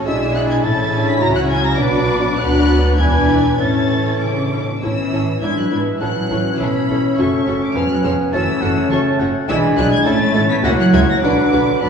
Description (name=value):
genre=quick classical-period movement for symphony orchestra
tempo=103 BPM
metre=2/4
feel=rubato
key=A major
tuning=A4 = 436 Hz
part: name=bright large flute ensemble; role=second line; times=0.0-11.9 s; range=B4 to D5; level=-26 LUFS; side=right 3 dB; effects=none
part: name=dark studio violin section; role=second line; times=0.0-11.9 s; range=F#4 to E5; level=-27 LUFS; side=left 1 dB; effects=none
part: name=warm clarinet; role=second line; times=0.0-11.9 s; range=C#4 to E4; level=-24 LUFS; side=left 4 dB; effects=none
part: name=warm bassoon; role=accompaniment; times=0.0-11.9 s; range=E3 to B3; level=-24 LUFS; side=right 3 dB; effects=none
part: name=warm studio viola section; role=accompaniment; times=0.0-11.9 s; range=B3 to G#4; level=-24 LUFS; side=left 1 dB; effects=none
part: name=mellow French horn section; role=sustained chords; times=0.0-11.9 s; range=E3 to E4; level=-23 LUFS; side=left 4 dB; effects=none
part: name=rich studio double bass section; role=bass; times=0.0-11.9 s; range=E1 to D2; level=-22 LUFS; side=right 1 dB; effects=none
part: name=warm symphonic cello section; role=bass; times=0.0-11.9 s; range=D2 to B3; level=-22 LUFS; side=right 2 dB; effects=none
part: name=warm studio violin section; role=melody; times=0.1-11.9 s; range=B5 to B6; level=-25 LUFS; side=left 3 dB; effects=none
part: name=clear oboe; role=second line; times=0.1-11.9 s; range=D5 to B5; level=-24 LUFS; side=right 1 dB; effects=none
room=wet scoring stage reverb, RT60 1.5 s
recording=heard from further back in the room, small room ambience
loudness=-14 LUFS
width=side -6 dB against mid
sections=0.0-4.8 A section; 4.8-11.9 A section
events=none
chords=0.1 E7/B; 0.6 A; 1.2 F#5/C#; 1.8 Bm; 2.4 Bm/D; 3.0 E7; 3.6 A; 5.4 E7/G#; 6.0 A; 7.2 F#m; 7.8 C#7/E#; 8.3 F#m7; 9.5 E7/B; 10.1 A; 10.6 F#7; 11.2 Bm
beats=| 0.06 0.64 | 1.22 1.80 | 2.39 2.99 | 3.60 4.21 | 4.83 5.42 | 6.01 6.60 | 7.18 7.75 | 8.33 8.91 | 9.49 10.06 | 10.64 11.23 | 11.82